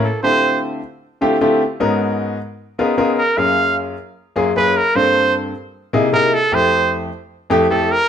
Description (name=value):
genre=jazz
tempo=152 BPM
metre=4/4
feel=straight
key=unclear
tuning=A4 = 438 Hz
part: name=bright trumpet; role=melody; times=0.0-0.6, 3.2-8.1 s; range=A4 to F5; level=-16 LUFS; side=right 2 dB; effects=none
part: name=warm baby grand piano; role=accompaniment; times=0.0-7.9 s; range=F2 to Bb4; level=-16 LUFS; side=left 2 dB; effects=none
room=wet stone room reverb, RT60 1.0 s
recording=band playing live in one room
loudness=-14 LUFS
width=side -8 dB against mid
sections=0.0-8.1 A section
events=trumpet solo 0.0-8.1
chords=0.0 Dm11; 1.6 Abm11; 2.4 Db13; 3.2 Gbmaj9; 4.8 Gm11; 5.5 C7alt; 6.3 Fmaj7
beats=| 0.04 0.43 0.83 1.22 | 1.61 2.01 2.40 2.79 | 3.19 3.58 3.98 4.37 | 4.76 5.15 5.55 5.94 | 6.33 6.73 7.12 7.51 | 7.91